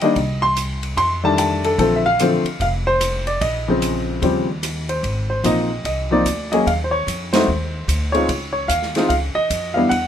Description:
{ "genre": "jazz piano trio", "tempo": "148 BPM", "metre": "4/4", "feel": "swing 64% on 8ths", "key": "unclear", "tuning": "A4 = 441 Hz", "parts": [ { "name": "warm baby grand piano", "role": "melody", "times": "0.0-10.1 s", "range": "Db3 to C6", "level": "-18 LUFS", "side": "left 1 dB", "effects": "none" }, { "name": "upright bass", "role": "bass", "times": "0.0-10.1 s", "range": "F1 to F2", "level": "-25 LUFS", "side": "equal", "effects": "none" }, { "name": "open jazz drum kit", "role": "drums", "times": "0.0-10.0 s", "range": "hi-hat, kick drum, ride cymbal, rim click, snare drum", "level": "-27 LUFS", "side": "right 1 dB", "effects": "none" } ], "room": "light reverb", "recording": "close, detailed microphones", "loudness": "-17 LUFS", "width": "side -9 dB against mid", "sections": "0.0-5.0 A section; 5.0-10.1 B section", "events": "band accent 7.3", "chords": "0.2 Cm; 1.0 F13; 1.8 Bbmaj9; 3.4 Bbm7; 4.2 Eb13; 5.0 Ab6; 6.7 Eb7sus2; 7.5 Ab (rootless); 8.3 Dbadd9" }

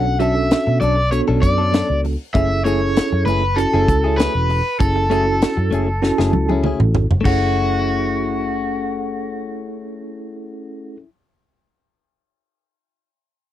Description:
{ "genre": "straight-eighth soul blues", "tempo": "98 BPM", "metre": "4/4", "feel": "swing 53% on 16ths", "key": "F# minor", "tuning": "A4 = 440 Hz", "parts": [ { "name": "overdriven electric guitar", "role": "melody", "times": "0.0-11.0 s", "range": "F#4 to F#5", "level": "-21 LUFS", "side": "left 1 dB", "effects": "none" }, { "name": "bell-like tine electric piano", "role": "accompaniment", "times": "0.0-11.0 s", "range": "B3 to A4", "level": "-23 LUFS", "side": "right 3 dB", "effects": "fast stereo tremolo" }, { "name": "direct-recorded clean electric guitar", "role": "stabs", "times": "0.0-11.1 s", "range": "F#3 to A4", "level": "-24 LUFS", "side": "left 7 dB", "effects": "none" }, { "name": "vintage muted fingered electric bass", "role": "bass", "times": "0.0-11.0 s", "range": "E1 to B2", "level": "-20 LUFS", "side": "equal", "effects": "none" }, { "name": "tight funk drum kit", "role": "drums", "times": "0.2-7.4 s", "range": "crash cymbal, hi-hat, kick drum, snare drum, toms", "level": "-19 LUFS", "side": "equal", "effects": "none" } ], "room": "little or no reverb", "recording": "dry, close 1970s-style studio recording", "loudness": "-15 LUFS", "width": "side -12 dB against mid", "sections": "0.0-7.3 A section; 7.3-9.7 B section", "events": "drum fill 6.0-7.3", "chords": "0.0 Bm9; 2.3 F#m9" }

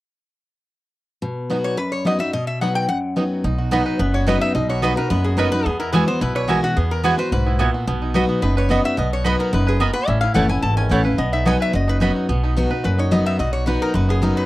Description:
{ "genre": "bluegrass", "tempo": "217 BPM", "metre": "4/4", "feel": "straight", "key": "B major", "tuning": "A4 = 440 Hz", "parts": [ { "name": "picked steel-string acoustic guitar", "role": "accompaniment", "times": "1.2-14.5 s", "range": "E2 to F#4", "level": "-21 LUFS", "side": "left 1 dB", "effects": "none" }, { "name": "bluegrass banjo", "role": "melody", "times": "1.5-14.5 s", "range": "B3 to B4", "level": "-27 LUFS", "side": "right 4 dB", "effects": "none" }, { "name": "lap resonator guitar", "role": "melody", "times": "1.6-14.5 s", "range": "F#4 to A5", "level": "-24 LUFS", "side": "left 2 dB", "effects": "none" }, { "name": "upright bass", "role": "bass", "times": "3.4-14.3 s", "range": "F#1 to E2", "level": "-22 LUFS", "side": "equal", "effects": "none" }, { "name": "mandolin", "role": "stabs", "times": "3.7-12.1 s", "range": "A3 to B5", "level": "-24 LUFS", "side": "right 5 dB", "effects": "tape echo" } ], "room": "little or no reverb", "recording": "dry, close 1970s-style studio recording", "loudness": "-17 LUFS", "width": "side -17 dB against mid", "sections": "1.2-3.4 A section; 3.4-12.3 B section; 12.3-14.5 B section", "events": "none", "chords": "1.2 B; 5.7 Eadd9; 7.9 B; 10.1 A; 11.2 B" }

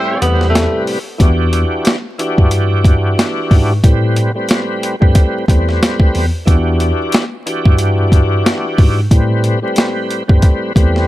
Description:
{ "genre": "hip hop, boom-bap hip-hop", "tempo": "91 BPM", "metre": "4/4", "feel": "swing 58% on 16ths", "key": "E minor", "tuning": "A4 = 439 Hz", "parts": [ { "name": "clear tenor saxophone", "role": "melody", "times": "0.0-0.8 s", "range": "A3 to C4", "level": "-20 LUFS", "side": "equal", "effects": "high-pass filter, low-pass filter, digital delay" }, { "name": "bright tonewheel organ", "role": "accompaniment", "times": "0.0-11.1 s", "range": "A2 to B4", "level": "-18 LUFS", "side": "equal", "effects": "overdrive, chorus vibrato, slow rotary speaker, high-pass filter, low-pass filter" }, { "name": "mellow tine electric piano", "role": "bass", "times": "0.2-11.0 s", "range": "E2 to A2", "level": "-15 LUFS", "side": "equal", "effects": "medium stereo tremolo" }, { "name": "boom bap sampler-style drum kit", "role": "drums", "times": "0.2-11.0 s", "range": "hi-hat, kick drum, snare drum", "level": "-12 LUFS", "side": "equal", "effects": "none" } ], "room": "digital ambience", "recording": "vinyl crackle", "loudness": "-11 LUFS", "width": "side -16 dB against mid", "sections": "0.0-1.2 A section; 1.2-11.1 B section", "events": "break 0.0-1.2", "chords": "0.0 Am9; 1.2 Em9; 3.8 Am9; 6.5 Em9; 9.1 Am9" }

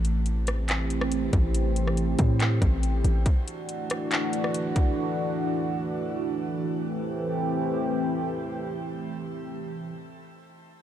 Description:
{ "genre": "hip hop, atmospheric cloud-rap", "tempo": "140 BPM", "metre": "4/4", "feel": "half-time", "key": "A dorian", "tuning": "A4 = 443 Hz", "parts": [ { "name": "dark analog pad", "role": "sustained chords", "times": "0.0-9.9 s", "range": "E3 to G4", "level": "-28 LUFS", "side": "right 1 dB", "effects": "chorus, phaser, sidechain pumping" }, { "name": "warm 808-style bass", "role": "bass", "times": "0.0-3.2 s", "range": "A1 to A2", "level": "-25 LUFS", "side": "equal", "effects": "none" }, { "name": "trap drum kit", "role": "drums", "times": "0.0-4.9 s", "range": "handclaps, hi-hat, kick drum, rim click", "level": "-29 LUFS", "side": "equal", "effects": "none" } ], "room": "light reverb, digital ambience", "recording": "dark, warm production", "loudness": "-24 LUFS", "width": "side -10 dB against mid", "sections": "0.0-6.7 A section; 6.7-10.1 B section", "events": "none", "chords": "0.0 Am7; 3.3 Dadd9; 6.7 Am7" }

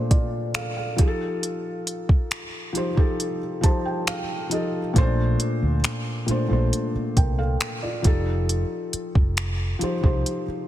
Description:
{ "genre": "contemporary R&B", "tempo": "68 BPM", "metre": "4/4", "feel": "straight", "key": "Bb major", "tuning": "A4 = 443 Hz", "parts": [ { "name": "felt-muted upright piano", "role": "accompaniment", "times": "0.0-10.7 s", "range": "Bb2 to A5", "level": "-26 LUFS", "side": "equal", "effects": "none" }, { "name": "smooth R&B drum kit", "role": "drums", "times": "0.1-10.5 s", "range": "finger snaps, hi-hat, kick drum", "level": "-22 LUFS", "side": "equal", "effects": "soft clipping on snare" }, { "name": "vintage muted fingered electric bass", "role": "bass", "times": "5.0-10.5 s", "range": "F1 to D2", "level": "-24 LUFS", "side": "equal", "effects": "none" } ], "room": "light reverb", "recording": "dense, heavily limited modern master", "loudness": "-21 LUFS", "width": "side -13 dB against mid", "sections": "0.0-10.7 A section", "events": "felt piano fill 3.2-5.0", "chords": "0.0 Bbmaj9; 1.0 F9; 5.0 Bbmaj9; 8.1 F9" }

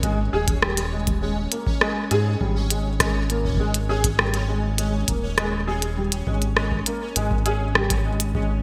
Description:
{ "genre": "IDM", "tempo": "101 BPM", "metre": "4/4", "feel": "straight", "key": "unclear", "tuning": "A4 = 442 Hz", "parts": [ { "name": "felt-muted upright piano", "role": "arpeggios", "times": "0.0-8.5 s", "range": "G3 to Ab4", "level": "-29 LUFS", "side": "equal", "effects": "ensemble chorus, digital delay" }, { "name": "round analog bass", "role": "bass", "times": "0.0-8.6 s", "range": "Eb1 to Ab2", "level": "-27 LUFS", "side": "equal", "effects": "none" }, { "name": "electronic kick drum", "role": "drums", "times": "0.0-8.5 s", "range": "none", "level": "-29 LUFS", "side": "equal", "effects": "none" }, { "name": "glitchy drum kit", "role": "drums", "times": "0.0-8.3 s", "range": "hi-hat, rim click", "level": "-26 LUFS", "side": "equal", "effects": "gated reverb" }, { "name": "pulsing gated texture", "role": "texture", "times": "0.0-8.6 s", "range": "Db4 to Db5", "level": "-36 LUFS", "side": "equal", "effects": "chorus, built-in reverb" } ], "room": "moderate lush hall reverb, RT60 2.4 s", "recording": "bright 1980s-style digital production", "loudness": "-23 LUFS", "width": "mono", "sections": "0.0-8.6 A section", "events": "none", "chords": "0.0 Ab5" }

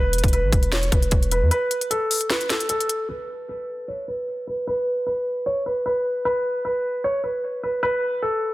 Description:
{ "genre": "hip hop, trap", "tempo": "152 BPM", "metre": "4/4", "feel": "half-time", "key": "unclear", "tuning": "A4 = 439 Hz", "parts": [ { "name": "dark concert grand piano", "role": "melody", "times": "0.0-8.5 s", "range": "A4 to C#5", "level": "-23 LUFS", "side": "equal", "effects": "low-pass filter, tape echo" }, { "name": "long sustained 808-style bass", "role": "bass", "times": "0.0-1.5 s", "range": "E1 to E2", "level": "-22 LUFS", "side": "equal", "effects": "none" }, { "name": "trap drum kit", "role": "drums", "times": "0.1-3.0 s", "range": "hi-hat, kick drum, snare drum", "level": "-21 LUFS", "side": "equal", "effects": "none" } ], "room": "light reverb, digital ambience", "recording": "dense, heavily limited modern master", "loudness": "-21 LUFS", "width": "side -18 dB against mid", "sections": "0.0-3.1 A section; 3.1-8.5 B section", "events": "break 1.5-3.1; filter sweep on grand piano 3.1-8.5", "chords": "0.0 E5; 1.5 N.C." }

